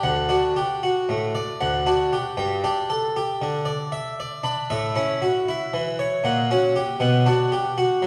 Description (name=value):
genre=classical, baroque-style suite movement for harpsichord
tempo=77 BPM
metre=3/4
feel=rubato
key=D major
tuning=A4 = 440 Hz
part: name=harpsichord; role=solo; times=0.0-8.1 s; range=D2 to B5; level=-23 LUFS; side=equal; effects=none
room=wet scoring stage reverb, RT60 1.7 s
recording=worn, warbling old tape, cassette tape, warbly pitch drift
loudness=-23 LUFS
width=mono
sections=0.0-8.1 A section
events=none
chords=0.0 D; 2.4 G; 4.7 A; 6.2 F#/A#; 7.0 Bm